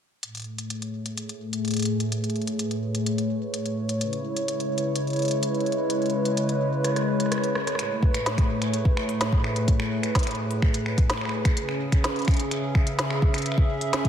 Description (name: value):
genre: IDM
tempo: 127 BPM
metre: 4/4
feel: straight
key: A major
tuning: A4 = 440 Hz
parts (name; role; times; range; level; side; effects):
- hollow soft pad; sustained chords; 0.2-14.1 s; A2 to E5; -25 LUFS; equal; chorus
- organic electronic drum kit; drums; 0.2-14.1 s; finger snaps, hi-hat, rim click, snare drum; -30 LUFS; equal; none
- electronic kick drum; drums; 8.0-14.1 s; none; -21 LUFS; equal; none
room: moderate lush hall reverb, RT60 1.8 s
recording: dreamy mix soaked in reverb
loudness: -23 LUFS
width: side -9 dB against mid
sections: 0.2-7.8 A section; 7.8-14.1 B section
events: filter sweep on analog synth pad 0.2-7.8; drum fill 6.8-7.8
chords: 0.2 Amaj7; 4.0 C#m7; 7.8 Amaj7; 11.6 C#m7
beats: | 0.23 0.70 1.18 1.65 | 2.12 2.59 3.06 3.54 | 4.01 4.48 4.96 5.43 | 5.90 6.37 6.84 7.32 | 7.79 8.26 8.73 9.21 | 9.68 10.15 10.62 11.10 | 11.57 12.04 12.51 12.99 | 13.46 13.93